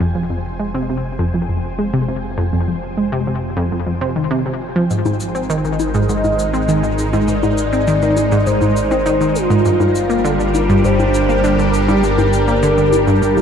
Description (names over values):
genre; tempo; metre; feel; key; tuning
ambient, sequencer-driven space music; 101 BPM; 4/4; straight; F dorian; A4 = 442 Hz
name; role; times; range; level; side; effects
lush unison pad; sustained chords; 0.0-13.4 s; G3 to Ab5; -20 LUFS; equal; chorus, phaser, shimmer reverb
analog pluck; riff; 0.0-13.4 s; F2 to C4; -18 LUFS; equal; chorus, ping-pong delay
fat analog bass; bass; 0.0-13.4 s; F1 to Ab1; -23 LUFS; equal; none
shaker and bongos; percussion; 4.9-13.4 s; none; -25 LUFS; left 6 dB; ping-pong delay
mellow horn-like synth lead; melody; 6.1-13.4 s; F4 to Eb5; -19 LUFS; equal; chorus, shimmer reverb, ping-pong delay
room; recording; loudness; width
wet huge ambient reverb, RT60 7.7 s; dark, warm production; -14 LUFS; side -8 dB against mid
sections
0.0-13.4 A section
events
fade-in on analog synth pad 0.0-13.4; fade-in on analog synth bass 0.0-13.4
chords
0.0 Fm; 4.9 Abmaj7; 9.7 Gm7